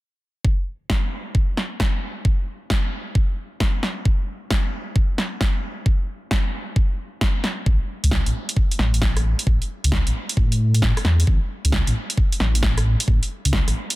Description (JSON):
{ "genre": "UK garage, two-step garage", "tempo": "133 BPM", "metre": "4/4", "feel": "swing 66% on 16ths", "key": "unclear", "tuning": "A4 = 438 Hz", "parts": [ { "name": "electronic kick drum", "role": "drums", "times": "0.4-13.6 s", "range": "none", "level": "-20 LUFS", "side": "equal", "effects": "none" }, { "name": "punchy analog drum machine", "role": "drums", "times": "0.9-14.0 s", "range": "hi-hat, rim click, snare drum", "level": "-26 LUFS", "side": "equal", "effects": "overdrive" }, { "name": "dark detuned saw bass", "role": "bass", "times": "7.7-13.7 s", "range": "A1 to A2", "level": "-19 LUFS", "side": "equal", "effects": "none" } ], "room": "little or no reverb", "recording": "dense, heavily limited modern master", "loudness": "-19 LUFS", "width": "side -19 dB against mid", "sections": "0.4-14.0 A section", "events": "none", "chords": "none" }